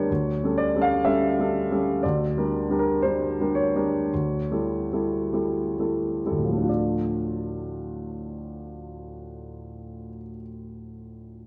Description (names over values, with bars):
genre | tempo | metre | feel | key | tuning
classical, romantic character piece for solo piano | 42-62 BPM | 2/4 | rubato | D minor | A4 = 444 Hz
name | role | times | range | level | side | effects
warm baby grand piano | solo | 0.0-11.5 s | D2 to F5 | -26 LUFS | equal | none
room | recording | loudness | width
moderate scoring stage reverb, RT60 1.7 s | dark, warm production | -25 LUFS | mono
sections
0.0-6.7 A section; 6.7-11.5 B section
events
slowing down 1.1-6.7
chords
0.1 A7/D; 2.0 Gm/D; 4.1 A5/D; 6.7 Dm